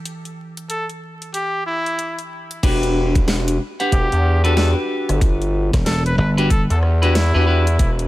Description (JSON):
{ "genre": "glitch hop", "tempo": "93 BPM", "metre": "4/4", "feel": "swing 62% on 16ths", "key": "E minor", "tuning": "A4 = 440 Hz", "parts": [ { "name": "clean electric guitar", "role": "stabs", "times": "0.0-7.6 s", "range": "E3 to F#5", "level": "-24 LUFS", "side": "left 1 dB", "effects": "sidechain pumping, low-pass filter, dub echo" }, { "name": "dubstep drum kit", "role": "drums", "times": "0.1-8.1 s", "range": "crash cymbal, hi-hat, rim click, snare drum", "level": "-26 LUFS", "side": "equal", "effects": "none" }, { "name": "bright trumpet", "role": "melody", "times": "0.7-7.9 s", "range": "E4 to B4", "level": "-25 LUFS", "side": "equal", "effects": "dub echo" }, { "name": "gritty driven synth bass", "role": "bass", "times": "2.6-8.1 s", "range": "E1 to E2", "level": "-17 LUFS", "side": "equal", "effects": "overdrive" }, { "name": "electronic kick drum", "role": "drums", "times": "2.6-8.0 s", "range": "none", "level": "-17 LUFS", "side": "equal", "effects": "none" }, { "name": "dry thumbed slap bass", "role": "bass", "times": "5.7-6.7 s", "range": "E1 to G1", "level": "-18 LUFS", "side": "equal", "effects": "none" } ], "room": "digital ambience", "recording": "vinyl crackle", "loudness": "-16 LUFS", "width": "side -16 dB against mid", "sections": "0.0-2.6 A section; 2.6-8.1 B section", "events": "drop 2.6-8.1", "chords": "0.0 Em7" }